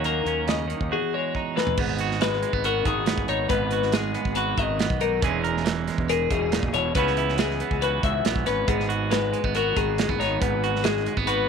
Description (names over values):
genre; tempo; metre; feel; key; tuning
math rock and midwest emo; 139 BPM; 4/4; straight; unclear; A4 = 440 Hz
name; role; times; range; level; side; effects
clean electric guitar; accompaniment; 0.0-11.5 s; E2 to A#4; -27 LUFS; right 10 dB; none
twelve-string electric guitar; arpeggios; 0.0-11.5 s; G#4 to E5; -26 LUFS; left 13 dB; warbly pitch drift
fuzz fingered electric bass; bass; 0.0-11.4 s; E1 to D#2; -29 LUFS; equal; overdrive
modern studio drum kit; drums; 0.0-11.4 s; crash cymbal, hi-hat, kick drum, snare drum, toms; -28 LUFS; right 3 dB; none
room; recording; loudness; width
light reverb, small room ambience; 1960s-style stereo with parts hard left and right; -22 LUFS; side -6 dB against mid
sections
0.0-1.8 A section; 1.8-11.5 B section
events
drum fill 1.3-1.8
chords
0.0 D#m7; 0.9 Emaj9; 1.8 G#m9; 5.2 E6; 7.0 C#m7; 8.7 G#m7